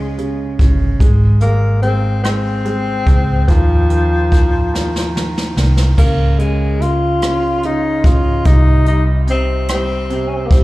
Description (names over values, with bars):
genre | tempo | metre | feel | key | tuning
six-eight pop ballad | 48 BPM (dotted quarters) | 6/8 | straight | unclear | A4 = 438 Hz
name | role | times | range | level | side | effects
mellow tenor saxophone | melody | 0.0-10.6 s | F3 to F4 | -19 LUFS | left 2 dB | slapback echo, tape echo
clear grand piano | accompaniment | 0.0-10.6 s | C3 to Ab3 | -22 LUFS | right 2 dB | none
vintage muted fingered electric bass | bass | 0.0-10.6 s | G1 to Eb2 | -16 LUFS | equal | none
jazz brush drum kit | drums | 0.2-10.6 s | crash cymbal, hi-hat, kick drum, rim click, snare drum | -14 LUFS | equal | none
room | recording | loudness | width
studio reverb | live gig heard through the venue's PA, club reverb | -12 LUFS | side -18 dB against mid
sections
0.0-6.0 A section; 6.0-10.6 B section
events
drum fill 4.7-6.0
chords
0.0 Db5; 1.0 Ab; 3.5 Ebsus2; 6.0 Db; 8.5 Cm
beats
| 1.01 2.24 | 3.49 4.74 | 5.99 7.23 | 8.46 9.70